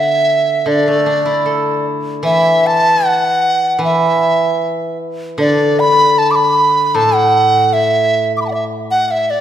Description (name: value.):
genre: chinese traditional, Chinese chamber ensemble.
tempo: 77 BPM.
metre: 4/4.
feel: rubato.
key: A zhi mode.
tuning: A4 = 440 Hz.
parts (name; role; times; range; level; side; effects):
large dizi; melody; 0.0-9.4 s; D5 to D6; -13 LUFS; right 1 dB; none.
steel-string zither; accompaniment; 0.0-9.3 s; A2 to A4; -17 LUFS; left 1 dB; none.
room: wet concert hall reverb, RT60 2.0 s.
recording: recorded in a church or concert hall.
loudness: -11 LUFS.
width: side -10 dB against mid.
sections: 0.0-9.4 A section.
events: none.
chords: none.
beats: 0.69 1.48 | 2.27 3.05 3.84 4.62 | 5.40 6.18 6.96 7.75 | 8.53 9.31.